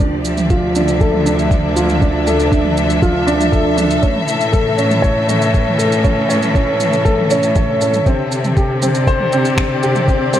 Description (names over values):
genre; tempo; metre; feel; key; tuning
piano and strings electronica; 119 BPM; 4/4; straight; D minor; A4 = 444 Hz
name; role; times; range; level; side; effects
warm studio string section; sustained chords; 0.0-10.4 s; D3 to E5; -19 LUFS; left 1 dB; sidechain pumping
warm upright piano; riff; 0.0-10.4 s; C4 to C#5; -17 LUFS; equal; low-pass filter, digital delay
clear studio cello section; bass; 0.0-10.4 s; D2 to C3; -20 LUFS; left 1 dB; sidechain pumping
electronic kick drum; drums; 0.0-10.2 s; none; -16 LUFS; equal; small room ambience
organic electronic drum kit; drums; 0.0-10.4 s; finger snaps, shaker, toms; -24 LUFS; right 2 dB; overdrive, small room ambience
room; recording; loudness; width
light reverb; none; -12 LUFS; side -11 dB against mid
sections
0.0-10.4 A section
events
filter sweep on upright piano 0.0-10.4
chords
0.0 Dmadd9; 4.0 A; 8.1 Csus2